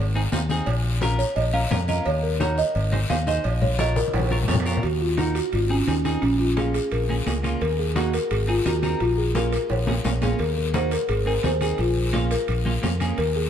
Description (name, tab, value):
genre	latin, cumbia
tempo	173 BPM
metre	4/4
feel	straight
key	Bb minor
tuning	A4 = 440 Hz
part	folk marimba with soft mallets	melody	0.0-13.5 s	Db4 to F5	-25 LUFS	right 1 dB	none
part	fingered electric bass	bass	0.0-13.5 s	Ab1 to F2	-24 LUFS	equal	none
part	clean electric guitar	accompaniment	0.2-13.2 s	Bb3 to Db5	-30 LUFS	right 1 dB	none
part	congas	percussion	0.3-13.5 s	none	-30 LUFS	left 4 dB	none
part	cowbell and timbales	percussion	0.3-13.4 s	none	-34 LUFS	right 6 dB	none
part	guiro	percussion	0.3-13.5 s	none	-36 LUFS	left 4 dB	none
room	moderate plate reverb, RT60 3.2 s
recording	heard from further back in the room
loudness	-20 LUFS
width	side -9 dB against mid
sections	0.0-4.8 A section; 4.8-13.5 B section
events	marimba solo 0.0-4.8; drum fill 4.0-4.8, 9.7-10.4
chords	0.0 Ab; 0.7 Bbm; 2.1 Ebm; 2.8 Ab; 3.4 Bbm; 4.8 Ebm; 5.5 Ab; 6.2 Bbm; 7.6 Ebm; 8.3 Abadd9; 9.0 Bbm; 10.4 Ebm; 11.1 Ab; 11.8 Bbm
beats	0.33 | 0.67 1.02 1.37 1.71 | 2.06 2.41 2.75 3.10 | 3.45 3.79 4.14 4.49 | 4.83 5.18 5.53 5.88 | 6.22 6.57 6.92 7.26 | 7.61 7.96 8.31 8.66 | 9.00 9.35 9.70 10.05 | 10.39 10.74 11.09 11.44 | 11.79 12.14 12.48 12.83 | 13.18